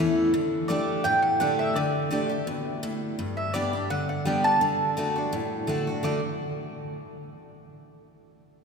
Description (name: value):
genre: bluegrass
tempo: 168 BPM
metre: 4/4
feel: swing 54% on 8ths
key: D major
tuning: A4 = 438 Hz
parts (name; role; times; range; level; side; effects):
- mandolin; melody; 0.0-6.2 s; D5 to D6; -27 LUFS; right 1 dB; none
- picked steel-string acoustic guitar; accompaniment; 0.0-6.2 s; E2 to G4; -26 LUFS; left 1 dB; none
room: wet cathedral reverb, RT60 4.6 s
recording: recorded in a church or concert hall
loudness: -24 LUFS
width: side -5 dB against mid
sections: 0.0-3.2 A section; 3.2-6.0 B section; 6.0-7.5 C section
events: none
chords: 0.3 Dsus4; 3.2 G; 4.6 D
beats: | 0.34 0.69 1.05 1.40 | 1.76 2.12 2.47 2.83 | 3.19 3.54 3.90 4.26 | 4.61 4.97 5.33 5.68 | 6.04